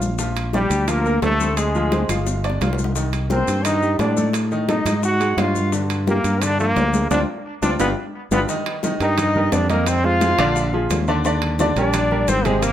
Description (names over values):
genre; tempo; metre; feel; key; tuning
Afro-Cuban jazz; 174 BPM; 4/4; straight; G minor; A4 = 440 Hz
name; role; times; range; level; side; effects
bright upright piano; accompaniment; 0.0-12.7 s; C3 to F5; -24 LUFS; right 1 dB; none
modern bright fingered electric bass; bass; 0.0-12.7 s; G1 to A2; -22 LUFS; equal; none
bongos; percussion; 0.0-12.7 s; none; -31 LUFS; left 4 dB; none
congas; percussion; 0.0-12.7 s; none; -28 LUFS; left 2 dB; none
maracas; percussion; 0.0-12.7 s; none; -34 LUFS; left 7 dB; none
timbales; percussion; 0.4-12.7 s; none; -30 LUFS; right 6 dB; none
brilliant trombone; melody; 0.5-12.7 s; G3 to F#4; -23 LUFS; right 1 dB; tape echo
bright reedy silver concert flute; second line; 0.5-12.7 s; G4 to F#5; -26 LUFS; left 4 dB; none
room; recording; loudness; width
moderate studio reverb, RT60 0.9 s; none; -17 LUFS; side -11 dB against mid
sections
0.0-8.5 A section; 8.5-12.7 B section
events
drum fill 2.3-3.0, 7.1-8.5; band accent 7.1-8.5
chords
0.2 Bb69; 1.6 G5; 3.0 Cm9; 4.3 Ab5; 5.7 Gm7; 7.1 Dm7; 7.8 G7; 8.5 F13sus4; 9.9 Fm7; 10.6 Bb7; 11.2 Ebmaj7